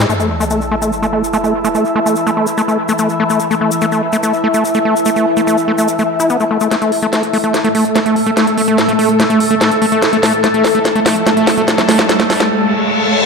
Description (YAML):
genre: psychedelic trance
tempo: 145 BPM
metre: 4/4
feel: straight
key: unclear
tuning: A4 = 440 Hz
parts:
  - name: evolving wavetable pad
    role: sustained chords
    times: 0.0-13.3 s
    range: E3 to A4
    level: -18 LUFS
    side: equal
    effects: phaser, built-in reverb
  - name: overdriven acid bass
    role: riff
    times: 0.0-12.4 s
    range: A3 to E4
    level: -15 LUFS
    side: moving between left 4 dB and right 5 dB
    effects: auto-pan, cassette tape, dub echo
  - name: granular cloud pad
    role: texture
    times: 0.0-12.5 s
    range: A3 to E6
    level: -18 LUFS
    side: left 2 dB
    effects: built-in reverb
  - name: garage drum kit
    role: drums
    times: 0.1-12.5 s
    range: crash cymbal, hi-hat, snare drum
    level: -17 LUFS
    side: equal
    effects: low-pass filter on hats, low-pass filter on cymbals, low-pass filter on snare, low-pass filter on room
  - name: egg shaker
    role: percussion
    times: 0.1-6.7 s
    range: none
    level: -26 LUFS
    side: left 4 dB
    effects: none
  - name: sub drop, riser and reverse cymbal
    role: sound effects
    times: 0.1-1.7, 9.5-13.3 s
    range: none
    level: -21 LUFS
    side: left 1 dB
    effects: none
room: wet lush hall reverb, RT60 1.6 s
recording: none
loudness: -11 LUFS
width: side -4 dB against mid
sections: 0.1-6.7 A section; 6.7-13.3 B section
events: band accent 0.0; impact 0.1-1.7; filter sweep on acid bass 0.1-6.7; build-up 6.7-13.3; drum fill 6.7-12.5; riser 9.5-13.3; reverse cymbal 12.5-13.3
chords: 0.1 A5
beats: | 0.09 0.51 0.92 1.33 | 1.75 2.16 2.58 2.99 | 3.40 3.82 4.23 4.64 | 5.06 5.47 5.89 6.30 | 6.71 7.13 7.54 7.96 | 8.37 8.78 9.20 9.61 | 10.02 10.44 10.85 11.27 | 11.68 12.09 12.51 12.92